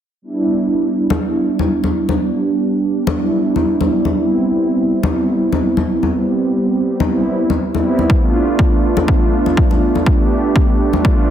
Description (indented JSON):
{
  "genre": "nu-disco, nu disco",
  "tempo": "122 BPM",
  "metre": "4/4",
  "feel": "swing 54% on 16ths",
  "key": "unclear",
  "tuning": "A4 = 439 Hz",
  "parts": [
    { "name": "warm analog pad", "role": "accompaniment", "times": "0.2-11.3 s", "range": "G3 to G4", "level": "-15 LUFS", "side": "right 2 dB", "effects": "chorus, cassette tape, sidechain pumping, digital delay" },
    { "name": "congas", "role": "percussion", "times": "1.1-11.0 s", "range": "none", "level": "-20 LUFS", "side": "left 4 dB", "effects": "none" },
    { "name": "electronic kick drum", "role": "drums", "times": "8.1-11.2 s", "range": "none", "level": "-14 LUFS", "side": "equal", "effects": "overdrive" }
  ],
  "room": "moderate plate reverb, RT60 1.8 s, digital ambience",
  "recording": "dense, heavily limited modern master",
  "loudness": "-13 LUFS",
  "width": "side -10 dB against mid",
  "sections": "0.2-11.3 A section",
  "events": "filter sweep on analog synth pad 0.2-11.3",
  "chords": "0.2 Em7; 4.2 Cmaj7/G; 8.1 G9"
}